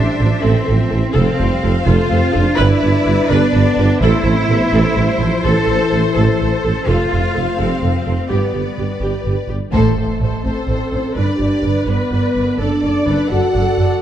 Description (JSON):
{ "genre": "cinematic", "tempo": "84 BPM (dotted quarters)", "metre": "6/8", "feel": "straight", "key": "A minor, A dorian from 9.7 s", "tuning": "A4 = 441 Hz", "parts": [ { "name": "rich symphonic violin section", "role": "melody", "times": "0.0-14.0 s", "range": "A4 to F#5", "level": "-26 LUFS", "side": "left 5 dB", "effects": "none" }, { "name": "clear symphonic violin section", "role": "second line", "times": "0.0-14.0 s", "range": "A4 to D5", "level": "-25 LUFS", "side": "left 3 dB", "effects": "none" }, { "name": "warm symphonic viola section", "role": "accompaniment", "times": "0.0-14.0 s", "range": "G4 to D5", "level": "-24 LUFS", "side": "right 2 dB", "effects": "none" }, { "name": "dark French horn section", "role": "sustained chords", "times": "0.0-14.0 s", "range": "E3 to F#4", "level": "-20 LUFS", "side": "left 2 dB", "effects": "none" }, { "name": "clear symphonic cello section", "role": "bass", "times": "0.0-13.9 s", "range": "F#2 to A4", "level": "-22 LUFS", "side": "right 1 dB", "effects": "none" }, { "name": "mellow tuba", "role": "bass", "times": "0.0-9.6 s", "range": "F1 to A1", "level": "-20 LUFS", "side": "right 2 dB", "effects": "none" }, { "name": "rich symphonic double bass section", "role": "bass", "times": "0.0-13.9 s", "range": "F1 to A1", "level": "-18 LUFS", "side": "right 2 dB", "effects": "none" }, { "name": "timpani", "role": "percussion", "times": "4.0-4.7 s", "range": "none", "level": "barely audible", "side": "none", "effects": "none" }, { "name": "impact", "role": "sound effects", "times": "9.7-11.2 s", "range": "none", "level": "-29 LUFS", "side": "left 1 dB", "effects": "none" } ], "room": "moderate scoring stage reverb, RT60 1.9 s", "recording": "dark, warm production", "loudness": "-13 LUFS", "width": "side -10 dB against mid", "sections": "0.0-9.7 A section; 9.7-14.0 B section", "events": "band accent 9.7-10.2; impact 9.7-11.2", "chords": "0.0 Am; 1.2 F; 2.6 G; 4.0 Am; 6.9 F; 8.3 G; 9.7 Am; 11.2 G; 12.6 D/F#" }